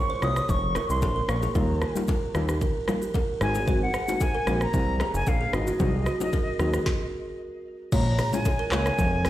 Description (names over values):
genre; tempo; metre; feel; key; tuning
afrobeats; 113 BPM; 4/4; straight; Bb minor; A4 = 439 Hz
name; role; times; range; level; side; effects
silver concert flute; melody; 0.0-9.3 s; Eb5 to Eb6; -31 LUFS; left 1 dB; tape echo
soft round pluck; accompaniment; 0.0-8.9 s; Gb3 to Gb4; -31 LUFS; left 3 dB; chorus
buzzing kalimba; riff; 0.1-9.3 s; F4 to Db5; -31 LUFS; right 4 dB; tape echo
fat analog bass; bass; 0.2-9.3 s; F1 to Eb2; -26 LUFS; equal; none
afro-pop drum kit; drums; 0.2-9.3 s; crash cymbal, handclaps, hi-hat, kick drum, rim click, shaker, snare drum, toms; -28 LUFS; equal; none
congas and bongos; percussion; 0.5-9.3 s; none; -36 LUFS; left 5 dB; none
room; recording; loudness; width
little or no reverb; played on a big sound system in a bare room, large studio reverb; -23 LUFS; side -14 dB against mid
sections
0.0-7.9 A section; 7.9-9.3 B section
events
stop 6.9-7.9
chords
0.0 Bbmadd9; 1.6 Ebadd9; 3.4 Ab7; 5.8 Cdim; 7.9 Bbm7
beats
0.49 1.02 | 1.55 2.08 2.61 3.15 | 3.68 4.21 4.74 5.27 | 5.80 6.33 6.86 7.39 | 7.92 8.46 8.99